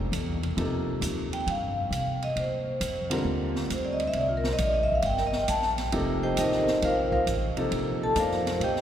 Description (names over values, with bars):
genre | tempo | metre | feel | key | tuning
modal jazz | 135 BPM | 4/4 | swing 67% on 8ths | F mixolydian | A4 = 440 Hz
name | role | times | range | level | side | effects
upright bass | bass | 0.0-8.8 s | F1 to C3 | -31 LUFS | equal | none
open jazz drum kit | drums | 0.1-8.8 s | hi-hat, kick drum, ride cymbal, snare drum | -36 LUFS | right 2 dB | none
clear grand piano | accompaniment | 0.6-8.4 s | C3 to D5 | -32 LUFS | equal | none
vibraphone with medium hard mallets | melody | 1.3-8.8 s | Eb4 to A5 | -27 LUFS | equal | none
room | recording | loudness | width
wet cathedral reverb, RT60 5.3 s | recorded in a church or concert hall | -25 LUFS | side -10 dB against mid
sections
0.0-8.8 A section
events
vibraphone solo 0.0-8.8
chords
0.0 F9sus4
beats
0.13 | 0.58 1.03 1.47 1.92 | 2.37 2.81 3.26 3.70 | 4.15 4.59 5.04 5.49 | 5.93 6.38 6.82 7.27 | 7.71 8.16 8.60